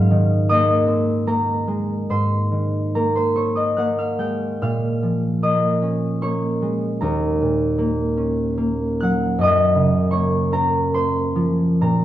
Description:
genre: classical, solo harp piece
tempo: 64-81 BPM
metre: 3/4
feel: rubato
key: unclear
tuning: A4 = 435 Hz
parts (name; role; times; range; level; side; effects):
- concert harp; solo; 0.0-12.0 s; Eb2 to G6; -17 LUFS; equal; none
room: wet recital hall reverb, RT60 1.5 s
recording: dark, warm production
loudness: -18 LUFS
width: side -12 dB against mid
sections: 0.0-12.0 A section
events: none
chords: 0.0 Abadd9; 4.6 Bbm7; 7.0 Ebm9; 9.4 Gbmaj7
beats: 0.50 1.29 | 2.11 2.95 3.79 | 4.63 5.45 6.24 | 7.03 7.79 8.60 | 9.40 10.15 10.96 | 11.83

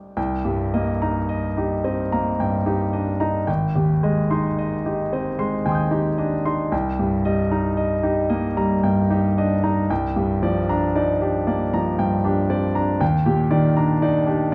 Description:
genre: classical, impressionist solo piano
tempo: 49-60 BPM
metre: 3/4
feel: rubato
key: C minor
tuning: A4 = 439 Hz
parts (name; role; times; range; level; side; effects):
- clear grand piano; solo; 0.0-14.5 s; Ab1 to G6; -21 LUFS; equal; none
room: moderate recital hall reverb, RT60 1.4 s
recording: close, detailed microphones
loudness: -21 LUFS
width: mono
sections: 0.2-14.5 A section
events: none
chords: 0.2 Cm7; 3.5 Abmaj7; 6.7 Cm7; 9.9 Bb69/C; 13.0 Ebmaj7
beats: | 0.17 1.30 2.40 | 3.48 4.58 5.66 | 6.73 7.78 8.85 | 9.90 10.96 11.99 | 13.01 14.03

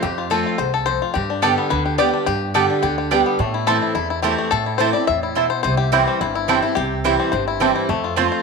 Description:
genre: bluegrass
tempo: 214 BPM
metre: 4/4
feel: straight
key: A minor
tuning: A4 = 440 Hz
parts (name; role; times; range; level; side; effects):
- bluegrass banjo; melody; 0.0-8.4 s; A3 to E5; -21 LUFS; left 9 dB; none
- picked acoustic archtop guitar; accompaniment; 0.0-8.4 s; E2 to G4; -22 LUFS; right 1 dB; none
- upright bass; bass; 0.0-8.3 s; G1 to A2; -26 LUFS; right 2 dB; none
- mandolin; stabs; 1.4-8.3 s; A3 to A5; -22 LUFS; right 10 dB; none
room: moderate echo chamber reverb, RT60 1.8 s, small room ambience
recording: 1960s-style stereo with parts hard left and right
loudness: -17 LUFS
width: side -4 dB against mid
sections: 0.0-8.4 A section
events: five-string banjo solo 0.0-8.4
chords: 0.0 F; 1.2 G; 3.4 Am; 5.6 C; 7.9 F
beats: | 0.03 0.31 0.59 0.87 | 1.15 1.43 1.71 1.99 | 2.27 2.56 2.83 3.12 | 3.40 3.68 3.96 4.24 | 4.52 4.80 5.08 5.36 | 5.64 5.92 6.20 6.49 | 6.77 7.05 7.33 7.61 | 7.89 8.17

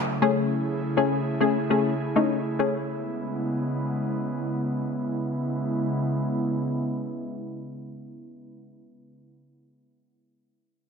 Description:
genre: pop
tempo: 101 BPM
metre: 4/4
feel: straight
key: C# minor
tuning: A4 = 440 Hz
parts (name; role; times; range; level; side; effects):
- airy breathy pad; sustained chords; 0.0-8.4 s; C#3 to G#4; -28 LUFS; right 1 dB; chorus, low-pass filter
- punchy chord stab; accompaniment; 0.2-2.8 s; A3 to G#4; -23 LUFS; left 4 dB; chorus, low-pass filter
room: moderate lush hall reverb, RT60 1.7 s, digital ambience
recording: none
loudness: -24 LUFS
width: side -6 dB against mid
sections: 0.0-5.3 A section; 5.3-7.6 B section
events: filter sweep 0.0-5.3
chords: 0.2 Amaj7; 2.9 C#m7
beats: | 0.52 1.11 1.71 2.30 | 2.90 3.49 4.08 4.68 | 5.27 5.87 6.46 7.05

